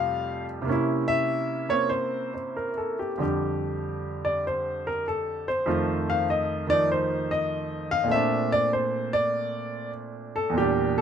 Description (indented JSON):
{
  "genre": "solo jazz",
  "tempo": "98 BPM",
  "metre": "4/4",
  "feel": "swing 69% on 8ths, rubato",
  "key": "F major",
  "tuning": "A4 = 440 Hz",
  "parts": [
    { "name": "clear grand piano", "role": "solo", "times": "0.0-11.0 s", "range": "E2 to F5", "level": "-24 LUFS", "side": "equal", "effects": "none" }
  ],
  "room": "little or no reverb",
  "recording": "close, detailed microphones",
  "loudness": "-24 LUFS",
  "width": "side -8 dB against mid",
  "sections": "0.0-3.2 A section; 3.2-11.0 B section",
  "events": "grand piano solo 3.2-11.0",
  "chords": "0.0 Fadd9; 0.7 C7b9; 3.2 Fsus2; 5.7 F7; 8.1 Bbmaj9",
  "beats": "0.07 | 0.68 1.29 1.91 2.56 | 3.20 3.81 4.43 5.05 | 5.66 6.27 6.88 7.49 | 8.09 8.70 9.31 9.93 | 10.55"
}